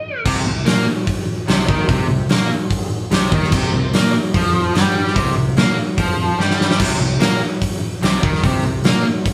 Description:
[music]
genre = blues rock power trio and southern rock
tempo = 147 BPM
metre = 4/4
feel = straight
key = C minor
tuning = A4 = 439 Hz
[part]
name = fuzz guitar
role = riff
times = 0.3-9.0 s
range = C3 to Bb3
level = -21 LUFS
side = equal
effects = distortion
[part]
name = mellow fretless electric bass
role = bass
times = 0.3-9.0 s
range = C2 to Bb2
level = -25 LUFS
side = equal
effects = none
[part]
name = huge arena drum kit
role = drums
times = 0.3-9.3 s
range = crash cymbal, hi-hat, kick drum, snare drum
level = -20 LUFS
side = equal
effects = none
[sound]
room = moderate studio reverb, RT60 0.7 s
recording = band playing live in one room, studio ambience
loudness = -17 LUFS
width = mono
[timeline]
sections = 0.3-6.8 A section; 6.8-9.3 A section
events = stop 0.0; drum fill 6.4-6.8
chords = 0.3 C5; 6.8 Cm

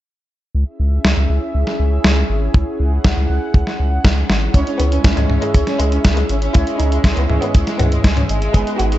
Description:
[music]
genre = italo disco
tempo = 120 BPM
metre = 4/4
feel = straight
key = C# minor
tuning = A4 = 443 Hz
[part]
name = lush unison pad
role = sustained chords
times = 0.7-9.0 s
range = B3 to F#5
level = -25 LUFS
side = equal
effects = chorus
[part]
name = round analog bass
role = bass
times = 0.5-9.0 s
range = G#1 to C#2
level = -17 LUFS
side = equal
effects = none
[part]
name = detuned 8-bit digital drum machine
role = drums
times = 1.0-9.0 s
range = hi-hat, snare drum, toms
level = -20 LUFS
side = equal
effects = none
[part]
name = kick drum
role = drums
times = 2.5-8.6 s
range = none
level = -13 LUFS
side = equal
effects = none
[part]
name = rich studio violin section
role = melody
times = 4.5-9.0 s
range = G#3 to G#4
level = -22 LUFS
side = equal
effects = digital delay
[part]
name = analog synth brass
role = stabs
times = 4.5-9.0 s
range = G#3 to C#5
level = -25 LUFS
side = right 3 dB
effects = chorus
[sound]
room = light reverb, studio ambience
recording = dark, warm production, nothing above 7.9 kHz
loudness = -14 LUFS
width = side -14 dB against mid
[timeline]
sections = 0.5-4.5 A section; 4.5-9.0 B section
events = drum fill 4.3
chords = 0.5 C#m

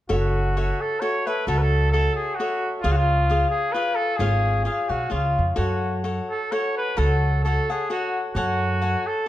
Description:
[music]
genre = mexican folk, mariachi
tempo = 131 BPM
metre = 3/4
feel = swing 55% on 8ths, rubato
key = F# minor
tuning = A4 = 439 Hz
[part]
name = clear trumpet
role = melody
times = 0.1-9.3 s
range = E#4 to C#5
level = -25 LUFS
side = right 1 dB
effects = none
[part]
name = cavaquinho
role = accompaniment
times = 0.1-9.3 s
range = E#4 to G#5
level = -26 LUFS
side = left 2 dB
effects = none
[part]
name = upright bass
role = bass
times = 0.1-8.9 s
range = F#1 to F#2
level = -22 LUFS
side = right 1 dB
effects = none
[sound]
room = moderate recital hall reverb, RT60 1.3 s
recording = dark, warm production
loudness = -20 LUFS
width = side -14 dB against mid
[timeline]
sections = 0.1-9.3 A section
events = none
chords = 0.1 F#m7; 2.8 C#; 5.6 F#m; 8.3 F#madd9

